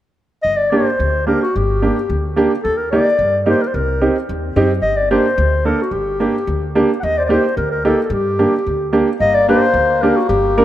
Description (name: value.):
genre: klezmer.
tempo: 110 BPM.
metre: 2/4.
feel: straight.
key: G harmonic minor.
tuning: A4 = 441 Hz.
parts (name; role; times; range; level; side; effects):
dark clarinet; melody; 0.4-10.6 s; F#4 to F#5; -17 LUFS; left 1 dB; none.
upright bass; bass; 0.4-10.6 s; G1 to G2; -21 LUFS; left 1 dB; none.
clear upright piano; accompaniment; 0.7-10.6 s; Bb3 to Bb4; -17 LUFS; right 2 dB; none.
mellow accordion; second line; 9.2-10.6 s; Bb3; -20 LUFS; left 7 dB; none.
room: moderate plate reverb, RT60 3.1 s.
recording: rough home demo mix.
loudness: -14 LUFS.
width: side -12 dB against mid.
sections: 0.4-9.2 A section; 9.2-10.6 A section.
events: none.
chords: 0.4 Gm; 2.6 Eb; 3.7 Cm; 4.8 Gm; 7.0 Eb; 8.1 Gm.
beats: | 0.45 0.99 | 1.54 2.09 | 2.64 3.19 | 3.73 4.28 | 4.83 5.38 | 5.93 6.47 | 7.02 7.57 | 8.12 8.66 | 9.21 9.76 | 10.30.